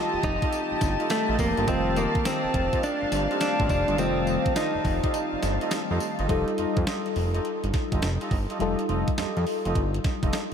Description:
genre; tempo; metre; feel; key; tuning
R&B, new jack swing; 104 BPM; 4/4; swing 64% on 16ths; unclear; A4 = 439 Hz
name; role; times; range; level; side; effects
direct-recorded clean electric guitar; melody; 0.0-5.4 s; A3 to G4; -28 LUFS; equal; spring reverb, tape echo
FM electric piano with auto-pan; accompaniment; 0.0-10.5 s; Eb3 to A4; -30 LUFS; left 4 dB; phaser
warm studio string section; sustained chords; 0.0-6.3 s; G4 to A5; -32 LUFS; left 1 dB; none
mellow horn section; stabs; 0.0-10.4 s; Eb4 to Eb5; -33 LUFS; right 3 dB; tape echo
fat analog bass; bass; 0.1-10.3 s; F1 to F2; -28 LUFS; equal; none
crisp 8-bit digital drum machine; drums; 0.2-10.5 s; hi-hat, kick drum, snare drum, tambourine; -29 LUFS; equal; none
room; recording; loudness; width
moderate huge ambient reverb, RT60 8.6 s; dreamy mix soaked in reverb; -23 LUFS; side -7 dB against mid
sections
0.0-6.3 A section; 6.3-10.5 B section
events
break 5.1-6.3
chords
0.0 F9

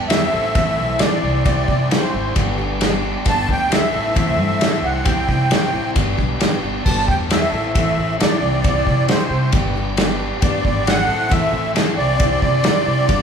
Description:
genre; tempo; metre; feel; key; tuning
folk rock and heartland rock; 134 BPM; 4/4; straight; unclear; A4 = 439 Hz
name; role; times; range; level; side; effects
picked steel-string acoustic guitar; accompaniment; 0.0-13.2 s; G2 to A4; -27 LUFS; left 1 dB; none
tonewheel organ; sustained chords; 0.0-13.2 s; D4 to E5; -33 LUFS; right 1 dB; none
overdriven electric guitar; riff; 0.0-13.2 s; G2 to A4; -26 LUFS; right 1 dB; none
upright bass; bass; 0.0-13.2 s; G1 to C3; -23 LUFS; equal; none
musette accordion; melody; 0.1-13.2 s; C5 to A5; -21 LUFS; right 1 dB; none
soft brush drum kit; drums; 0.1-13.2 s; crash cymbal, kick drum, ride cymbal, snare drum; -19 LUFS; equal; none
room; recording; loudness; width
moderate large studio reverb, RT60 1.1 s; band playing live in one room; -15 LUFS; side -7 dB against mid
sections
0.0-13.2 A section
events
none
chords
0.3 Am; 1.2 Cadd9; 2.4 G; 3.9 Am; 4.8 Cadd9; 6.0 G; 7.5 Am; 8.4 Cadd9; 9.5 G; 11.1 Am; 12.0 Cadd9

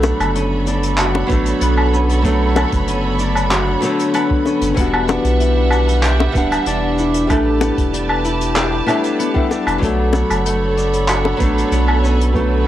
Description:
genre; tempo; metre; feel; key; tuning
sunset chillout; 95 BPM; 4/4; straight; B minor; A4 = 440 Hz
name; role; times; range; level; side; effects
nylon-string guitar; accompaniment; 0.0-12.7 s; D3 to F#5; -20 LUFS; moving between left 4 dB and right 3 dB; auto-pan, cassette tape, analog delay
rich symphonic string section; sustained chords; 0.0-12.7 s; G3 to B5; -24 LUFS; right 4 dB; cassette tape
concert harp; arpeggios; 0.0-12.7 s; A3 to A4; -21 LUFS; left 2 dB; cassette tape, analog delay
round analog bass; bass; 0.0-12.7 s; D1 to B1; -19 LUFS; right 1 dB; tube saturation
jazz brush drum kit; drums; 0.0-12.5 s; handclaps, hi-hat, shaker, woodblock; -21 LUFS; left 1 dB; none
bongos; percussion; 0.0-11.4 s; none; -20 LUFS; left 5 dB; none
electronic kick drum; drums; 1.3-12.5 s; none; -20 LUFS; right 1 dB; none
room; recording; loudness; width
moderate small room reverb, RT60 0.6 s; home recording on cassette; -14 LUFS; side -12 dB against mid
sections
0.0-12.7 A section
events
none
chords
0.0 Bm9; 4.8 Em9; 7.3 A9sus4; 9.8 Bm9

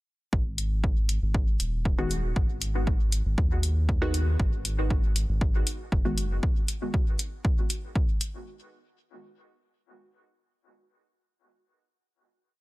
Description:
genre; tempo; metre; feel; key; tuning
dub techno; 118 BPM; 4/4; straight; G# minor; A4 = 440 Hz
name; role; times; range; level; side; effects
soft dub sub bass; bass; 0.3-6.4 s; D#1 to D#2; -27 LUFS; equal; tube saturation, sidechain pumping
electronic kick drum; drums; 0.3-8.1 s; none; -27 LUFS; equal; none
electronic hi-hat; drums; 0.6-8.3 s; none; -31 LUFS; left 2 dB; none
filtered dub chord stab; stabs; 2.0-6.3 s; D#3 to F#4; -34 LUFS; equal; chorus, phaser, cassette tape, sidechain pumping, dub echo
room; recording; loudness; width
digital ambience; dense, heavily limited modern master; -24 LUFS; side -20 dB against mid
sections
0.3-8.5 groove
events
none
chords
0.3 G#m7

